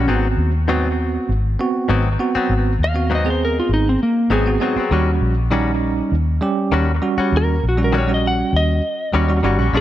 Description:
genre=blues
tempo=99 BPM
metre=4/4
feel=straight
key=unclear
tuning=A4 = 440 Hz
part: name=clean lap steel guitar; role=melody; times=0.0-9.8 s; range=Bb3 to F#5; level=-21 LUFS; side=left 1 dB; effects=none
part: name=direct-recorded clean electric guitar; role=stabs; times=0.0-9.8 s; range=Ab2 to F#4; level=-23 LUFS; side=left 5 dB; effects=analog delay
part: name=vintage muted fingered electric bass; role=bass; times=0.0-9.8 s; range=G1 to Eb2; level=-19 LUFS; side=equal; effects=none
part: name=bell-like tine electric piano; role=accompaniment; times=0.1-9.8 s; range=G3 to Ab4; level=-21 LUFS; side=right 4 dB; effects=fast stereo tremolo
room=light reverb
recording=none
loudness=-16 LUFS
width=side -13 dB against mid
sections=0.0-9.8 A section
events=electric slide guitar solo 0.0-9.8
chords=0.1 Ab7#9; 4.9 Eb7#9

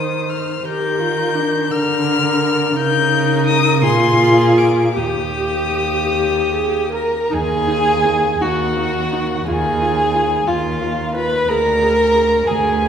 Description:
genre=classical, slow romantic movement for string quartet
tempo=49-61 BPM (dotted quarters)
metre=6/8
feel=rubato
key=Eb major, Eb minor from 7.3 s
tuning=A4 = 440 Hz
part: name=dark violin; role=melody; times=0.0-12.9 s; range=F5 to G6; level=-21 LUFS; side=left 5 dB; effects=none
part: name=dark violin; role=second line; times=0.0-12.9 s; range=F4 to C5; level=-19 LUFS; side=equal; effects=none
part: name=dark viola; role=accompaniment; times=0.0-12.9 s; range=D4 to Bb4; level=-21 LUFS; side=left 1 dB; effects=none
part: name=warm cello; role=bass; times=0.0-12.9 s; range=D2 to Eb3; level=-21 LUFS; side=right 3 dB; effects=none
room=wet scoring stage reverb, RT60 1.7 s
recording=heard from further back in the room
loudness=-14 LUFS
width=side -8 dB against mid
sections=0.0-7.3 A section; 7.3-12.9 B section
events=none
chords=0.0 N.C.; 0.7 Bb/Eb; 2.8 Eb7/Db; 3.8 Bb5; 5.0 Eb; 7.3 Ebm; 9.5 Abm6/Eb; 11.5 Bb7/D

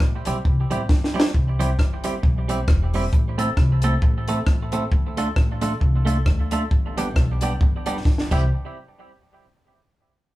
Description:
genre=ska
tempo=134 BPM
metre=4/4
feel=swing 57% on 8ths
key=C major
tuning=A4 = 440 Hz
part: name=upright bass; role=bass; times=0.0-8.5 s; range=E1 to D2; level=-24 LUFS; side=equal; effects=none
part: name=compact cocktail drum kit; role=drums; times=0.0-8.4 s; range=crash cymbal, hi-hat, kick drum, rim click, snare drum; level=-20 LUFS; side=equal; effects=none
part: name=clean electric guitar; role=accompaniment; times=0.3-8.4 s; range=G3 to A4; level=-26 LUFS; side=right 2 dB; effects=tape echo
room=moderate studio reverb, RT60 0.5 s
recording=band playing live in one room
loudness=-18 LUFS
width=side -17 dB against mid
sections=0.0-1.3 A section; 1.3-8.5 B section; 8.5-10.3 C section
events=drum fill 0.9-1.3, 8.1-8.5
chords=0.0 C; 3.1 Am; 4.9 Dm; 6.7 G; 8.3 C; 8.5 N.C.

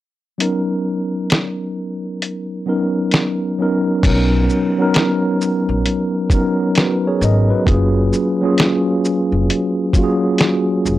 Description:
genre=lo-fi hip hop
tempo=66 BPM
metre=4/4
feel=swing 64% on 16ths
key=B lydian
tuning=A4 = 441 Hz
part: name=mellow tine electric piano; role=accompaniment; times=0.4-11.0 s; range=F#3 to D#5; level=-16 LUFS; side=equal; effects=medium stereo tremolo, cassette tape, low-pass filter
part: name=lo-fi sampler-style drum kit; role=drums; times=0.4-11.0 s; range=crash cymbal, hi-hat, kick drum, shaker, snare drum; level=-17 LUFS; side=equal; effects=none
part: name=upright bass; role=bass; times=4.0-11.0 s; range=E#1 to B1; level=-17 LUFS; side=equal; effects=none
room=light reverb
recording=dry, gritty hardware recording, transformer saturation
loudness=-15 LUFS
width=side -14 dB against mid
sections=0.4-4.0 A section; 4.0-11.0 B section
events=kick muted 0.4-4.0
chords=0.4 Bmaj9; 7.7 F#maj9

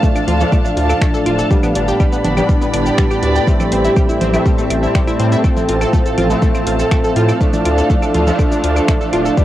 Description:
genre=melodic techno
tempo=122 BPM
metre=4/4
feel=straight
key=unclear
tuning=A4 = 440 Hz
part: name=deep dark ambient pad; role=sustained chords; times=0.0-9.4 s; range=G3 to A5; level=-22 LUFS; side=right 4 dB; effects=chorus, built-in reverb, sidechain pumping, cassette tape
part: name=analog pluck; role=arpeggios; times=0.0-9.4 s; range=G3 to A5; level=-22 LUFS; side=equal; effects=chorus, sidechain pumping, cassette tape, tape echo
part: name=analog synth brass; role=stabs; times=0.0-9.4 s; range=F3 to D4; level=-20 LUFS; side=left 3 dB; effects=chorus, sidechain pumping, cassette tape, tape echo
part: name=analog drone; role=drone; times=0.0-9.4 s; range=A2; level=-26 LUFS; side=equal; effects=chorus, sidechain pumping, cassette tape
part: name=electronic kick drum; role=drums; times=0.0-9.4 s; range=none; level=-15 LUFS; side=equal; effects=cassette tape
part: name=punchy analog drum machine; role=drums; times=0.0-9.4 s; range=claves, congas, finger snaps, hi-hat, shaker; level=-24 LUFS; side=right 1 dB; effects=cassette tape
part: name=dark studio string section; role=texture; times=0.0-9.4 s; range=B3 to B5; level=-22 LUFS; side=right 2 dB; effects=sidechain pumping, cassette tape
part: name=round analog bass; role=bass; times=0.3-9.3 s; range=D1 to A2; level=-18 LUFS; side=equal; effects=sidechain pumping
room=light reverb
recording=home recording on cassette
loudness=-12 LUFS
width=side -13 dB against mid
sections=0.0-9.4 A section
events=none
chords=0.0 Dm; 1.5 G; 3.5 Am7; 5.4 F/A; 7.4 Dm

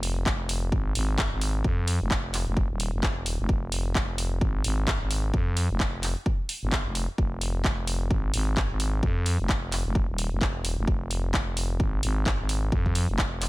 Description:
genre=bass house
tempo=130 BPM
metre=4/4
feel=swing 59% on 16ths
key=F minor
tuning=A4 = 440 Hz
part: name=growling FM bass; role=bass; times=0.0-13.5 s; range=Eb1 to F2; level=-27 LUFS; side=equal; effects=tube saturation, sidechain pumping
part: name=garage drum kit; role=drums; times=0.0-13.5 s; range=handclaps, hi-hat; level=-30 LUFS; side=equal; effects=studio reverb
part: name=electronic kick drum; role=drums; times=0.3-13.3 s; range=none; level=-27 LUFS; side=equal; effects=studio reverb
room=digital ambience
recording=none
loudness=-24 LUFS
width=side -20 dB against mid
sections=0.0-13.5 A section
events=none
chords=none

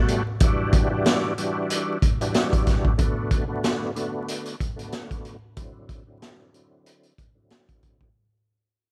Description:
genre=hip hop, boom-bap hip-hop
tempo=93 BPM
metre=4/4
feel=swing 58% on 16ths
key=unclear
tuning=A4 = 441 Hz
part: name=bright tonewheel organ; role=accompaniment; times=0.0-8.1 s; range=B2 to F#4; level=-30 LUFS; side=equal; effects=overdrive, chorus vibrato, slow rotary speaker, cassette tape, high-pass filter, low-pass filter
part: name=raw garage drum kit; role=drums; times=0.1-8.1 s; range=hi-hat, kick drum, snare drum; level=-25 LUFS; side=equal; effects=none
room=small room ambience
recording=vinyl crackle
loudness=-24 LUFS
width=mono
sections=0.0-8.1 A section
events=fade-out 0.0-8.1; filter sweep on tonewheel organ 0.0-8.1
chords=0.4 Em9; 3.0 Bm7; 5.6 D9

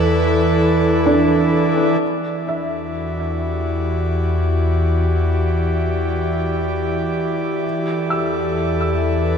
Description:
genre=ambient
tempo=free time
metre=none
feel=none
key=E minor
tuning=A4 = 439 Hz
part: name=airy breathy pad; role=sustained chords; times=0.0-9.4 s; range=E3 to D5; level=-18 LUFS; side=right 1 dB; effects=chorus
part: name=felt-muted upright piano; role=arpeggios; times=0.0-9.4 s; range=D4 to E6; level=-23 LUFS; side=right 1 dB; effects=tape echo
part: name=round analog bass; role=bass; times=0.0-9.4 s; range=E2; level=-21 LUFS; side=left 1 dB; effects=none
part: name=glass harmonica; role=texture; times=2.0-9.4 s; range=E5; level=-32 LUFS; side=left 10 dB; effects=stereo widening
room=moderate plate reverb, RT60 2.3 s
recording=echo-heavy mix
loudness=-16 LUFS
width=side -7 dB against mid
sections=0.0-2.0 A section; 2.0-9.4 B section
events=fade-in on analog synth pad 2.0-9.4; fade-in on felt piano 2.0-9.4; fade-in on glass harmonica 2.0-9.4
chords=0.0 E7sus4; 2.0 Em7

